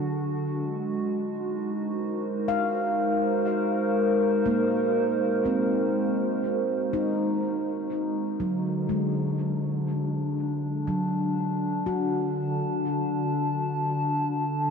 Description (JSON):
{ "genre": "ambient", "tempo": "60 BPM", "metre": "4/4", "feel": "straight", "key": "unclear", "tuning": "A4 = 439 Hz", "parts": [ { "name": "warbly tape-like pad", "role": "sustained chords", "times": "0.0-14.7 s", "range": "D3 to A5", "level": "-26 LUFS", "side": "equal", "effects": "chorus, built-in reverb" }, { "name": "handpan", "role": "arpeggios", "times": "0.0-14.7 s", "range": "F#3 to E#5", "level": "-30 LUFS", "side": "equal", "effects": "diffuse ambient delay" } ], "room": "wet huge ambient reverb, RT60 8.2 s", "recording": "dark, warm production", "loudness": "-24 LUFS", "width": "side -6 dB against mid", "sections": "0.0-14.7 A section", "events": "none", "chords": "0.5 G#7; 8.4 D" }